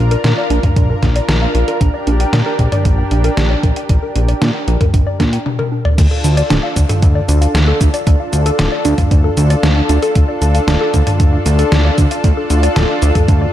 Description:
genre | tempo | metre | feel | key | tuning
synthwave | 115 BPM | 4/4 | straight | D minor | A4 = 440 Hz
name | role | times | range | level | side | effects
lush unison pad | sustained chords | 0.0-13.5 s | D4 to Bb4 | -20 LUFS | left 1 dB | chorus, sidechain pumping
warbly dusty pluck | arpeggios | 0.0-13.5 s | D4 to G5 | -21 LUFS | right 1 dB | chorus, digital delay
fat analog bass | bass | 0.0-13.5 s | D1 to Bb2 | -14 LUFS | equal | sidechain pumping
detuned 8-bit digital drum machine | drums | 0.1-13.4 s | cabasa, crash cymbal, hi-hat, snare drum, toms | -18 LUFS | equal | none
electronic kick drum | drums | 0.6-13.4 s | none | -13 LUFS | equal | none
room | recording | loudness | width
light reverb | dark, warm production | -11 LUFS | side -12 dB against mid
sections
0.0-6.0 A section; 6.0-13.5 B section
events
drum fill 5.5-6.0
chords
0.0 Bb; 1.8 Gm/Bb; 6.0 Dm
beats
0.24 0.76 1.29 | 1.81 2.33 2.85 3.37 | 3.90 4.42 4.94 5.46 | 5.98 6.50 7.03 7.55 | 8.07 8.59 9.11 9.63 | 10.16 10.68 11.20 11.72 | 12.24 12.76 13.29

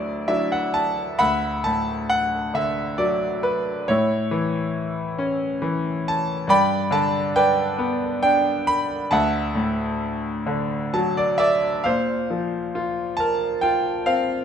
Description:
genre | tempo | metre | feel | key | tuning
classical, lyrical solo piano | 68 BPM | 3/4 | rubato | D major | A4 = 439 Hz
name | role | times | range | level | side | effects
bright concert grand piano | solo | 0.0-14.4 s | D2 to B5 | -20 LUFS | equal | none
room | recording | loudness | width
light reverb | minimal, uncompressed stereo recording | -20 LUFS | side -8 dB against mid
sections
0.0-1.2 A section; 1.2-11.8 B section; 11.8-14.4 C section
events
grand piano fill 0.0-1.2, 10.5-11.8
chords
0.0 Dadd9; 3.9 A; 6.5 G; 9.1 Dadd9; 11.8 Bbsus2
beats
0.28 | 1.20 2.10 2.99 | 3.89 4.76 5.63 | 6.49 7.35 8.23 | 9.11 10.00 10.92 | 11.85 12.73 13.62

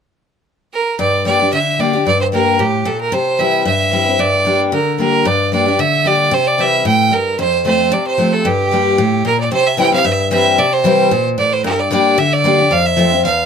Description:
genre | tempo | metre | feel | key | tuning
bluegrass | 225 BPM | 4/4 | swing 53% on 8ths | G dorian | A4 = 438 Hz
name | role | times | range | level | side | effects
clear fiddle | melody | 0.7-13.5 s | G4 to G5 | -14 LUFS | right 4 dB | none
picked steel-string acoustic guitar | accompaniment | 1.0-13.5 s | E2 to G4 | -15 LUFS | left 4 dB | none
room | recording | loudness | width
light reverb | close, detailed microphones | -12 LUFS | side -7 dB against mid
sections
1.0-9.5 A section; 9.5-13.5 B section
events
none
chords
0.0 N.C.; 1.0 Gm; 3.1 C; 4.2 Gm; 6.3 C; 7.4 F; 8.5 Gm; 9.5 C; 11.6 Gm; 12.7 F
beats
0.19 0.46 0.73 | 0.99 1.26 1.52 1.79 | 2.06 2.32 2.59 2.86 | 3.12 3.39 3.66 3.92 | 4.19 4.46 4.72 4.99 | 5.25 5.52 5.79 6.05 | 6.32 6.59 6.85 7.12 | 7.39 7.65 7.92 8.19 | 8.45 8.72 8.99 9.25 | 9.52 9.78 10.05 10.32 | 10.58 10.85 11.12 11.38 | 11.65 11.91 12.18 12.45 | 12.71 12.98 13.24

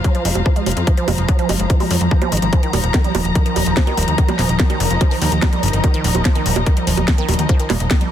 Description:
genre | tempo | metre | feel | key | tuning
psychedelic trance | 145 BPM | 4/4 | straight | unclear | A4 = 441 Hz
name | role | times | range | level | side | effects
pulsing gated texture | sustained chords | 0.0-8.1 s | F3 | -23 LUFS | right 2 dB | chorus, built-in reverb, sidechain pumping
woody wave-folded pluck | riff | 0.0-8.0 s | Eb3 to Ab3 | -25 LUFS | right 2 dB | chorus, auto-pan, sidechain pumping, digital delay
drum and bass drum kit | drums | 0.0-8.1 s | bongos, hi-hat, snare drum | -22 LUFS | right 2 dB | overdrive
electronic kick drum | drums | 0.0-8.0 s | none | -15 LUFS | equal | overdrive
dark symphonic string section | texture | 0.0-8.1 s | Eb4 to Bb5 | -25 LUFS | left 4 dB | sidechain pumping
plucky analog bass | bass | 0.3-7.9 s | Eb1 to F2 | -19 LUFS | equal | none
room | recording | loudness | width
light reverb | dense, heavily limited modern master | -14 LUFS | side -10 dB against mid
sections
0.0-8.1 A section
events
filter sweep on synth arpeggio sound 0.0-8.1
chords
0.0 F5; 2.5 Eb5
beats
0.04 0.46 | 0.87 1.29 1.70 2.11 | 2.53 2.94 3.35 3.77 | 4.18 4.60 5.01 5.42 | 5.84 6.25 6.67 7.08 | 7.49 7.91

